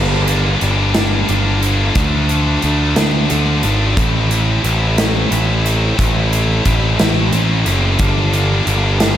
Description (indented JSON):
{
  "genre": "indie rock",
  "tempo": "60 BPM (dotted quarters)",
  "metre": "6/8",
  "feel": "straight",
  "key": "unclear",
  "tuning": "A4 = 440 Hz",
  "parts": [
    { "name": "heavy high-gain guitar", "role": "riff", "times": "0.0-9.2 s", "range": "D3 to E4", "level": "-18 LUFS", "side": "left 1 dB", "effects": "distortion" },
    { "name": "fuzz picked electric bass", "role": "bass", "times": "0.0-9.2 s", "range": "F#1 to D2", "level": "-16 LUFS", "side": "equal", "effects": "overdrive" },
    { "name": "big rock drum kit", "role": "drums", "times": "0.3-9.2 s", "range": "hi-hat, kick drum, snare drum", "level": "-20 LUFS", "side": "equal", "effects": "none" }
  ],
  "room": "little or no reverb",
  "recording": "none",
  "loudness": "-13 LUFS",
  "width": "side -11 dB against mid",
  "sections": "0.0-9.2 A section",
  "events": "none",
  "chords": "0.0 Gm; 2.0 Dm; 4.0 Am; 8.0 Gm",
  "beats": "0.96 | 1.97 2.98 | 3.98 4.99 | 5.99 7.00 | 8.00 9.01"
}